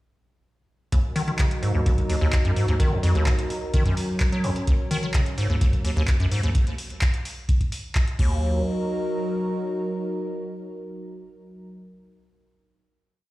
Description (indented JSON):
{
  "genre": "acid house",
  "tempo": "128 BPM",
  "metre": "4/4",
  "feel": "straight",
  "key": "Eb minor",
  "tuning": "A4 = 438 Hz",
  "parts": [
    { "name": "lush unison pad", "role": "sustained chords", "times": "0.9-11.7 s", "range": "Gb3 to Bb4", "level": "-29 LUFS", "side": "equal", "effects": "chorus, sidechain pumping" },
    { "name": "acid bass, square", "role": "riff", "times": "0.9-8.6 s", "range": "Eb2 to Gb3", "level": "-24 LUFS", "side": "equal", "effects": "tube saturation, analog chorus, cassette tape, sidechain pumping, digital delay" },
    { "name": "booming analog drum machine", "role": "drums", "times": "0.9-8.3 s", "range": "crash cymbal, handclaps, hi-hat", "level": "-33 LUFS", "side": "equal", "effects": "none" },
    { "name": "electronic kick drum", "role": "drums", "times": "0.9-8.3 s", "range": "none", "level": "-23 LUFS", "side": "equal", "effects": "none" }
  ],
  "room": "light reverb",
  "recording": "played on a big sound system in a bare room, stone room reverb",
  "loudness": "-21 LUFS",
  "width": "side -18 dB against mid",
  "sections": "0.9-8.4 groove; 8.4-12.2 final hit",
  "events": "none",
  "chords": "0.9 Ebm"
}